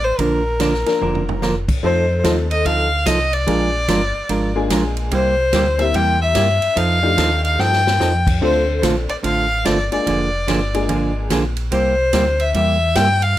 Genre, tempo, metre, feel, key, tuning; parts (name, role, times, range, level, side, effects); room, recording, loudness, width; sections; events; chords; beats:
country, western swing; 146 BPM; 4/4; swing 64% on 8ths; Bb major; A4 = 440 Hz
rich fiddle; melody; 0.0-13.4 s; Bb4 to G5; -19 LUFS; left 2 dB
sub bass with octave; bass; 0.0-13.4 s; F1 to G2; -21 LUFS; equal
hollow-body jazz guitar; accompaniment; 0.2-13.1 s; C3 to Bb4; -21 LUFS; right 3 dB
swinging big-band drum kit; drums; 0.2-13.3 s; crash cymbal, hi-hat, kick drum, ride cymbal, snare drum, toms; -25 LUFS; equal
tack piano; accompaniment; 0.9-11.3 s; F3 to Bb4; -24 LUFS; left 4 dB
light reverb; -15 LUFS; side -13 dB against mid
0.0-1.8 A section; 1.8-13.4 B section
drum fill 1.0-1.4, 7.6-8.0
0.2 Bb; 1.8 F7; 3.5 Bb7; 5.1 C7; 6.8 F13; 8.4 Dm7; 10.1 Bb7; 11.7 C7
| 0.19 0.60 1.01 1.42 | 1.83 2.24 2.65 3.06 | 3.48 3.89 4.30 4.71 | 5.12 5.53 5.95 6.36 | 6.77 7.18 7.59 8.01 | 8.42 8.83 9.24 9.65 | 10.07 10.48 10.89 11.31 | 11.72 12.13 12.54 12.96 | 13.37